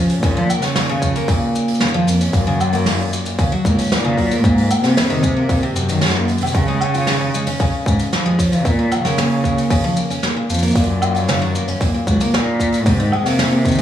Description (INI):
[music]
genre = folktronica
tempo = 114 BPM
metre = 4/4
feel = straight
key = unclear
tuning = A4 = 440 Hz
[part]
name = picked twelve-string acoustic guitar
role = arpeggios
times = 0.0-13.8 s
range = Bb2 to F4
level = -19 LUFS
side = equal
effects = digital delay
[part]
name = warm cello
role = bass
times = 0.0-13.8 s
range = Db2 to F3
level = -18 LUFS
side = equal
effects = none
[part]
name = soft brush drum kit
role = drums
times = 0.1-13.8 s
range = hi-hat, shaker, snare drum, woodblock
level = -22 LUFS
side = equal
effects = none
[part]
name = electronic kick drum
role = drums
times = 0.2-13.8 s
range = none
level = -20 LUFS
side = equal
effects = overdrive
[sound]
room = studio reverb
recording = small room ambience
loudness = -15 LUFS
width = side -10 dB against mid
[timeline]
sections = 0.0-13.8 A section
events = none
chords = 0.2 Bbm; 2.3 Gb; 4.4 Abadd9; 6.5 Db; 8.7 Bbm; 10.8 Gb; 12.9 Abadd9